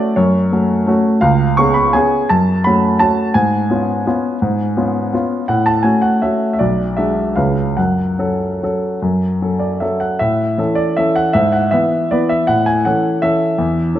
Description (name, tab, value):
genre	classical, piano waltz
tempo	138-176 BPM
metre	3/4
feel	rubato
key	F# minor, A major from 10.2 s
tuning	A4 = 442 Hz
part	clear grand piano	solo	0.0-14.0 s	B1 to C#6	-13 LUFS	equal	none
room	moderate scoring stage reverb, RT60 2.0 s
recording	nothing above 11.0 kHz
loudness	-13 LUFS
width	side -11 dB against mid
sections	0.0-10.2 A section; 10.2-14.0 B section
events	none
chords	0.0 F#m; 1.2 C#7; 2.3 F#m; 3.3 C#7/G#; 5.5 F#m/A; 6.6 G#m7b5/B; 7.4 C#7; 7.8 F#m; 10.2 A; 11.3 E/G#; 12.5 A